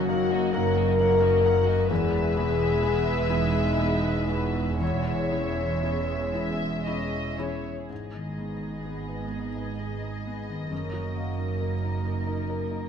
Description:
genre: cinematic, emotional film score for orchestra.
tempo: 38-45 BPM (dotted quarters).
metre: 6/8.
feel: rubato.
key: G# minor.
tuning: A4 = 440 Hz.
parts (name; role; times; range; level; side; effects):
dark studio violin section; melody; 0.0-12.9 s; D#5 to F#5; -36 LUFS; left 2 dB; none.
dark symphonic violin section; second line; 0.0-12.9 s; F#4 to E5; -35 LUFS; equal; none.
dark studio viola section; accompaniment; 0.0-12.9 s; F#3 to B3; -38 LUFS; right 2 dB; none.
felt-muted upright piano; accompaniment; 0.0-12.9 s; E2 to B4; -35 LUFS; left 2 dB; none.
warm French horn section; sustained chords; 0.0-6.4 s; D#4 to A#4; -26 LUFS; left 4 dB; none.
concert harp; arpeggios; 0.0-12.9 s; E2 to A#4; -35 LUFS; left 7 dB; none.
dark studio double bass section; bass; 0.0-12.9 s; E1 to G#1; -30 LUFS; right 4 dB; none.
warm studio cello section; bass; 0.0-12.9 s; E2 to G#2; -32 LUFS; right 4 dB; none.
room: moderate scoring stage reverb, RT60 1.4 s.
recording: dark, warm production.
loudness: -24 LUFS.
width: side -7 dB against mid.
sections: 0.0-7.9 A section; 7.9-12.9 B section.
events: none.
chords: 0.0 D#m/F#; 1.9 E; 4.8 C#m/E; 7.9 G#m; 10.7 D#m/F#.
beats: 0.54 | 1.90 3.31 | 4.81 6.36 | 7.90 9.33 | 10.71 12.06.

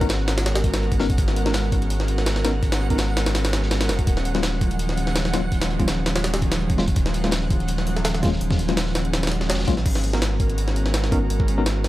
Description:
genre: drum and bass, jungle.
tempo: 166 BPM.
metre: 4/4.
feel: swing 53% on 16ths.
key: G# minor.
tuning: A4 = 435 Hz.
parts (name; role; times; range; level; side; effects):
airy breathy pad; sustained chords; 0.0-11.9 s; D#3 to A#4; -27 LUFS; right 1 dB; chorus.
tine electric piano; stabs; 0.0-11.6 s; F#3 to A#4; -28 LUFS; left 3 dB; medium stereo tremolo, dub echo.
saturated sub bass; bass; 0.0-11.9 s; D#1 to A#1; -24 LUFS; equal; none.
jungle sampler-style drum kit; drums; 0.0-11.9 s; crash cymbal, hi-hat, kick drum, snare drum; -23 LUFS; equal; none.
backwards swelling texture; texture; 0.0-9.9 s; F#5; -37 LUFS; right 1 dB; built-in reverb.
crunchy breakbeat drum kit; drums; 0.1-9.8 s; hi-hat, snare drum; -36 LUFS; equal; high-pass filter on hats, high-pass filter on snare, high-pass filter on room.
room: little or no reverb.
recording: dry, gritty hardware recording.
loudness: -19 LUFS.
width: side -16 dB against mid.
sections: 0.0-9.9 A section; 9.9-11.9 A section.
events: drop 0.0-9.9, 9.9-11.9.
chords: 0.0 G#m11; 4.1 D#m11; 9.9 G#m11.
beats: 0.10 0.46 0.82 | 1.18 1.54 1.90 2.27 | 2.63 2.99 3.35 3.71 | 4.07 4.43 4.79 5.16 | 5.52 5.88 6.24 6.60 | 6.96 7.33 7.69 8.05 | 8.41 8.77 9.13 9.49 | 9.86 10.22 10.58 10.94 | 11.30 11.66.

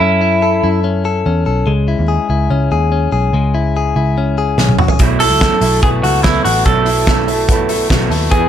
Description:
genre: jangly indie pop.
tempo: 145 BPM.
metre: 4/4.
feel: straight.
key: unclear.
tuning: A4 = 441 Hz.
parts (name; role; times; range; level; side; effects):
electric guitar through a small old amp; melody; 0.0-0.8, 5.2-8.5 s; E4 to A4; -14 LUFS; right 2 dB; slapback echo.
direct-recorded clean electric guitar; arpeggios; 0.0-8.5 s; F#3 to A4; -18 LUFS; left 6 dB; none.
vintage muted picked electric bass; bass; 0.0-8.5 s; A1 to F#2; -16 LUFS; right 1 dB; none.
loose indie drum kit; drums; 4.6-8.4 s; hi-hat, kick drum, snare drum, toms; -15 LUFS; equal; none.
electric guitar through a small old amp; accompaniment; 5.0-8.5 s; B2 to G#4; -20 LUFS; right 5 dB; none.
room: light reverb.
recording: none.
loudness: -11 LUFS.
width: side -10 dB against mid.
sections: 0.0-8.5 A section.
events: drum fill 4.6-5.0.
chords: 0.0 F#m7; 1.7 C#m; 5.0 B7sus4.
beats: | 0.02 0.43 0.85 1.26 | 1.68 2.09 2.51 2.92 | 3.34 3.75 4.17 4.58 | 5.00 5.41 5.83 6.24 | 6.66 7.07 7.49 7.90 | 8.32.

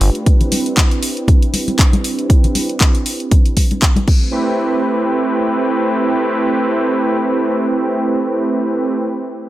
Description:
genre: nu-disco, nu disco.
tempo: 118 BPM.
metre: 4/4.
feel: swing 56% on 16ths.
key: A minor.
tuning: A4 = 440 Hz.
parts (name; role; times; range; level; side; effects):
warm analog pad; accompaniment; 0.0-9.0 s; A3 to B4; -17 LUFS; right 1 dB; chorus, sidechain pumping, tape echo.
house drum kit; drums; 0.0-4.2 s; crash cymbal, handclaps, hi-hat; -20 LUFS; left 1 dB; none.
electronic kick drum; drums; 0.3-4.2 s; none; -12 LUFS; equal; none.
congas; percussion; 0.4-4.1 s; none; -23 LUFS; left 2 dB; none.
room: light reverb.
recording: none.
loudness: -13 LUFS.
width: side -15 dB against mid.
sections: 0.0-4.3 A section; 4.3-8.4 B section.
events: none.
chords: 0.3 Cmaj7; 4.1 Am7.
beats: | 0.26 0.77 1.28 1.79 | 2.30 2.81 3.31 3.82 | 4.33 4.84 5.35 5.86 | 6.37 6.87 7.38 7.89.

